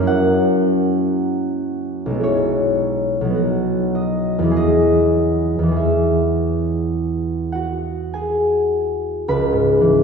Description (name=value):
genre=classical, solo harp piece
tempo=49-56 BPM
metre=4/4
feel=rubato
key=E major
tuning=A4 = 440 Hz
part: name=concert harp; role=solo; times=0.0-10.0 s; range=B1 to B5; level=-16 LUFS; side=equal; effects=none
room=wet scoring stage reverb, RT60 1.9 s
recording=heard from further back in the room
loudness=-16 LUFS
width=side -5 dB against mid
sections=0.0-9.3 A section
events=none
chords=0.1 F#7; 2.2 E/B; 3.4 B; 4.6 E; 9.3 C#m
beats=| 0.06 1.15 2.23 3.37 | 4.55 5.75 6.94 8.11 | 9.28